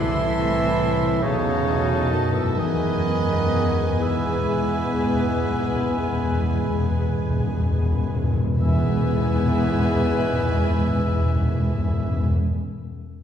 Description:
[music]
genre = classical, slow romantic movement for symphony orchestra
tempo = 36-49 BPM (dotted quarters)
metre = 12/8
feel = rubato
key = E major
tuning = A4 = 440 Hz
[part]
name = warm chamber violin section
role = melody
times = 0.0-12.3 s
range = C#5 to E5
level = -38 LUFS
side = left 2 dB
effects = none
[part]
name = bright clarinet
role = second line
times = 0.0-12.3 s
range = B3 to E4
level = -35 LUFS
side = left 2 dB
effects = none
[part]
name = clear oboe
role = second line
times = 0.0-12.3 s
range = C#5 to E5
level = -33 LUFS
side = right 1 dB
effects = none
[part]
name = mellow concert flute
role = second line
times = 0.0-12.3 s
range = G#5 to A5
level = -36 LUFS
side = right 1 dB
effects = none
[part]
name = warm chamber violin section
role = second line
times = 0.0-12.3 s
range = A4 to C6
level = -33 LUFS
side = left 2 dB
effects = none
[part]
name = mellow bassoon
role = accompaniment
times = 0.0-12.3 s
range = C#3 to E3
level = -29 LUFS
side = right 1 dB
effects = none
[part]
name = warm chamber viola section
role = accompaniment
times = 0.0-12.3 s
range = B3 to G#4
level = -31 LUFS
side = left 1 dB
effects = none
[part]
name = mellow French horn section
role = sustained chords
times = 0.0-12.3 s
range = A3 to A4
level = -33 LUFS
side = left 5 dB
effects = none
[part]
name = warm trombone section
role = sustained chords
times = 0.0-12.3 s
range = B2 to G#3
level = -34 LUFS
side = right 3 dB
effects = none
[part]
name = concert harp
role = arpeggios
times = 0.0-12.6 s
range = B2 to E5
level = -32 LUFS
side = left 4 dB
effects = none
[part]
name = dark trumpet section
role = stabs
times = 0.0-12.3 s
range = B4 to E5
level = -33 LUFS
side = right 3 dB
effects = none
[part]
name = dark symphonic double bass section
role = bass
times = 0.0-12.3 s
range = B1 to E2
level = -29 LUFS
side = right 1 dB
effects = none
[part]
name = warm chamber cello section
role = bass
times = 0.0-12.3 s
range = E2 to A2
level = -29 LUFS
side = right 2 dB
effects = none
[part]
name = timpani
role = percussion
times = 2.6-12.3 s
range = E2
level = -23 LUFS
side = equal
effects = none
[sound]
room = wet scoring stage reverb, RT60 1.7 s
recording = heard from further back in the room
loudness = -19 LUFS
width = side -9 dB against mid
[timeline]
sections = 0.0-8.6 A section; 8.6-13.2 B section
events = slowing down 0.0-8.6; timpani fill 2.6-8.6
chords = 0.0 Am/C; 1.2 B7; 2.6 E

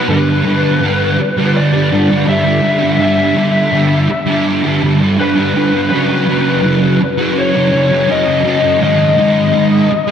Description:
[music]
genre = rock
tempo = 83 BPM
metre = 4/4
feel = straight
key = unclear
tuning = A4 = 439 Hz
[part]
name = lead guitar through a small cranked amp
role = melody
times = 0.0-10.1 s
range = B4 to E5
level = -16 LUFS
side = left 4 dB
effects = overdrive, diffuse ambient delay
[part]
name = fuzz guitar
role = riff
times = 0.0-10.1 s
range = F#2 to G#3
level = -12 LUFS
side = right 1 dB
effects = distortion, ensemble chorus
[sound]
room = wet church reverb, RT60 3.7 s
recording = dreamy mix soaked in reverb, faint mains hum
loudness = -10 LUFS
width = side -8 dB against mid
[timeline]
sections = 0.1-10.1 A section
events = none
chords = 0.1 G6; 5.9 F#5; 8.8 G#5

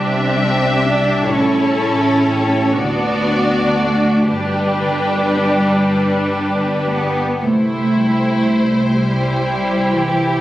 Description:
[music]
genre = classical, slow romantic movement for symphony orchestra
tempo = 36-43 BPM (dotted quarters)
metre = 6/8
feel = rubato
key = C major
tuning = A4 = 440 Hz
[part]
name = warm studio violin section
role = melody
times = 0.0-10.4 s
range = B4 to E5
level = -23 LUFS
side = left 2 dB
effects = none
[part]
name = warm studio violin section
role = second line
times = 0.0-10.4 s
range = E4 to A4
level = -24 LUFS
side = left 1 dB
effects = none
[part]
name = rich studio viola section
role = accompaniment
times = 0.0-10.4 s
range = D4 to E4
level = -21 LUFS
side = right 1 dB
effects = none
[part]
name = concert harp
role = arpeggios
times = 0.0-10.4 s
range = G2 to G4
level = -25 LUFS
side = left 4 dB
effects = none
[part]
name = rich studio cello section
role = bass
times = 0.0-10.4 s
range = E3 to D4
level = -18 LUFS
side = right 1 dB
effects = none
[part]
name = rich studio double bass section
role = bass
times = 0.0-10.4 s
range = G1 to D2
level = -24 LUFS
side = right 1 dB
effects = none
[sound]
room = moderate scoring stage reverb, RT60 1.6 s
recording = recorded on a phone in the room, studio reverb, compression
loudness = -14 LUFS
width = side -14 dB against mid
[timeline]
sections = 0.0-10.4 A section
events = none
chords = 0.0 C; 1.3 A7; 2.8 D7; 4.3 G; 7.4 C

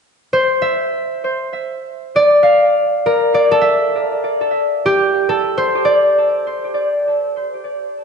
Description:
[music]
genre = ambient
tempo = 67 BPM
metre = 3/4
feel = straight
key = G dorian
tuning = A4 = 440 Hz
[part]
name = concert harp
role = solo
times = 0.3-7.8 s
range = G4 to F5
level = -14 LUFS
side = equal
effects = tape echo
[sound]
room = wet concert hall reverb, RT60 2.0 s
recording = nothing above 10.6 kHz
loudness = -13 LUFS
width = side -6 dB against mid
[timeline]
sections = 0.0-8.0 A section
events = none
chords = 0.0 Gm7

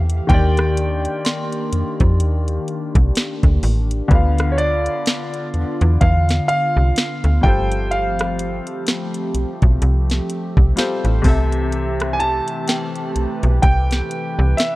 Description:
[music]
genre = contemporary R&B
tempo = 63 BPM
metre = 4/4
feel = swing 58% on 16ths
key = D dorian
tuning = A4 = 439 Hz
[part]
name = felt-muted upright piano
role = accompaniment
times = 0.0-14.8 s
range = C3 to F5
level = -26 LUFS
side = left 3 dB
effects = none
[part]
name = hollow soft pad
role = sustained chords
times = 0.0-14.8 s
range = D3 to B4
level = -26 LUFS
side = equal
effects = chorus
[part]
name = slap-like FM bass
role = bass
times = 0.0-14.5 s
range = G1 to F2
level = -17 LUFS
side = equal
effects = none
[part]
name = smooth R&B drum kit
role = drums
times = 0.1-14.8 s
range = hi-hat, kick drum, rim click, snare drum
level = -17 LUFS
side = equal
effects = none
[part]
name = clear concert grand piano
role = melody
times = 0.3-14.8 s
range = C#5 to A5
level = -22 LUFS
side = right 1 dB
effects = tape echo
[part]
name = synth chime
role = texture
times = 0.3-4.5, 12.7-14.8 s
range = G5 to C6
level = -34 LUFS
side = right 1 dB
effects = ensemble chorus, tremolo, tape echo
[sound]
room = little or no reverb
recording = worn, warbling old tape, cassette tape, warbly pitch drift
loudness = -16 LUFS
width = side -19 dB against mid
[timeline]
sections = 0.0-14.8 A section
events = none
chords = 0.3 Ebmaj7; 4.1 Dm69; 7.4 G9sus4; 11.2 C6

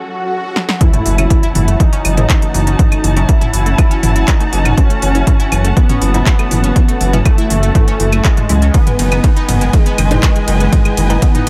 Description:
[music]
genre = melodic techno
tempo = 121 BPM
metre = 4/4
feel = straight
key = F# dorian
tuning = A4 = 440 Hz
[part]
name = warm studio string section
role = sustained chords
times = 0.0-11.5 s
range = E3 to A5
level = -25 LUFS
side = equal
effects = sidechain pumping
[part]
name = swell and impact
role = sound effects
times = 0.0-2.8 s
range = none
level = -26 LUFS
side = equal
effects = none
[part]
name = techno drum kit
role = drums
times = 0.6-11.5 s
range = claves, handclaps, hi-hat, ride cymbal, snare drum, toms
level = -22 LUFS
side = equal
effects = none
[part]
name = unison lead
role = melody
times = 0.8-11.5 s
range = G#3 to E4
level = -22 LUFS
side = equal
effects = subtle chorus, sidechain pumping, delay
[part]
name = analog pluck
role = arpeggios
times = 0.8-11.5 s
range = D#3 to E5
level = -25 LUFS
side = equal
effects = chorus, cassette tape, sidechain pumping, tape echo
[part]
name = electronic kick drum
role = drums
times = 0.8-11.3 s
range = none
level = -14 LUFS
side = equal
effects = none
[part]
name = dark detuned saw bass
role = bass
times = 1.1-11.5 s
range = F#1 to C#2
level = -16 LUFS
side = equal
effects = sidechain pumping
[part]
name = filtered dub chord stab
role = stabs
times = 1.2-11.2 s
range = G#2 to E4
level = -27 LUFS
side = equal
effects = none
[part]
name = deep dark ambient pad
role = texture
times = 10.0-11.5 s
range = E4 to G#5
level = -30 LUFS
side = equal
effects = none
[sound]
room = digital ambience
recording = none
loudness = -12 LUFS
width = mono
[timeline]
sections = 0.8-11.5 A section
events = break 0.0-0.8; swell 0.0-0.8; drum fill 0.6; drop 0.8-11.5; impact 0.8-2.8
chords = 0.0 F#m; 0.8 F#m7; 8.7 Emaj7/F#

